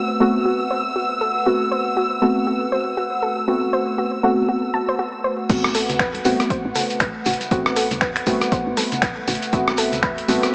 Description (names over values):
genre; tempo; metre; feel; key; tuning
deep house; 119 BPM; 4/4; swing 59% on 16ths; A dorian; A4 = 440 Hz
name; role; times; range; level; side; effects
hollow soft pad; sustained chords; 0.0-10.5 s; A3 to F#5; -27 LUFS; equal; chorus, sidechain pumping
soft round pluck; arpeggios; 0.0-10.3 s; F#4 to A5; -25 LUFS; equal; chorus, sidechain pumping, analog delay
deep mellow chord stab; stabs; 0.0-10.5 s; A3 to F#4; -22 LUFS; equal; chorus, sidechain pumping, tape echo
rich studio violin section; texture; 0.0-5.5 s; E6; -25 LUFS; equal; none
woody FM bass; bass; 5.5-10.4 s; A1 to E2; -30 LUFS; equal; sidechain pumping
dusty soul sampler-style drum kit; drums; 5.5-10.5 s; crash cymbal, finger snaps, hi-hat, rim click; -23 LUFS; equal; none
electronic kick drum; drums; 5.5-10.2 s; none; -24 LUFS; equal; none
shekere; percussion; 5.5-10.5 s; none; -29 LUFS; equal; none
congas; percussion; 5.6-10.4 s; none; -33 LUFS; equal; none
room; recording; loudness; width
moderate lush hall reverb, RT60 2.8 s; vinyl crackle, small speaker sound; -18 LUFS; side -29 dB against mid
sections
0.0-5.5 A section; 5.5-10.5 B section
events
filter sweep on synth arpeggio sound 0.0-5.5; drop 5.5-10.5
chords
0.0 Am69